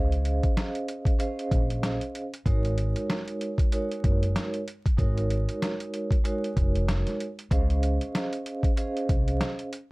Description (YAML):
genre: hip hop, boom-bap hip-hop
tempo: 95 BPM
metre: 4/4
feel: swing 58% on 16ths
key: Db major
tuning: A4 = 440 Hz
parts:
  - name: vibraphone with soft mallets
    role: accompaniment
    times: 0.0-9.7 s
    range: Ab3 to F5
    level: -31 LUFS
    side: right 2 dB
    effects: high-pass filter, low-pass filter
  - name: upright bass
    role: bass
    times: 0.0-9.4 s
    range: F1 to Db2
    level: -26 LUFS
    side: equal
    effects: none
  - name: lo-fi sampler-style drum kit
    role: drums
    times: 0.1-9.9 s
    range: hi-hat, kick drum, snare drum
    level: -26 LUFS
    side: equal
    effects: overdrive
room: little or no reverb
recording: dark, warm production, vinyl crackle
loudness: -24 LUFS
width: side -24 dB against mid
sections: 0.0-9.9 A section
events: none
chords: 0.0 Dbmaj7; 2.5 Ab7sus4; 7.5 Dbmaj7